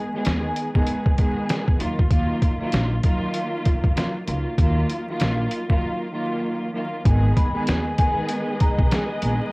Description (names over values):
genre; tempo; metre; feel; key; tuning
hip hop, boom-bap hip-hop; 97 BPM; 4/4; swing 61% on 16ths; unclear; A4 = 439 Hz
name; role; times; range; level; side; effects
warm symphonic string section; accompaniment; 0.0-9.5 s; Eb3 to Ab4; -25 LUFS; equal; cassette tape, high-pass filter, low-pass filter, plate reverb
trip hop sampler-style drum kit; drums; 0.2-9.4 s; hi-hat, kick drum, snare drum; -21 LUFS; equal; none
upright bass; bass; 0.3-9.4 s; Ab1 to F2; -23 LUFS; equal; tube saturation
warm studio string section; sustained chords; 7.1-9.5 s; Ab3 to Eb5; -32 LUFS; equal; high-pass filter, low-pass filter, cassette tape
vibraphone with medium mallets; melody; 7.4-8.9 s; Ab5 to Cb6; -28 LUFS; left 1 dB; high-pass filter, low-pass filter, plate reverb, analog delay
room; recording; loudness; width
light reverb; home recording on cassette, vinyl crackle; -20 LUFS; side -26 dB against mid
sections
0.0-7.1 A section; 7.1-9.5 B section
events
break 5.8-7.1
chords
0.0 Abm; 1.8 Ebmadd9; 7.1 Abm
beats
0.25 0.87 1.49 | 2.11 2.73 3.34 3.96 | 4.58 5.20 5.82 6.44 | 7.06 7.67 8.29 8.91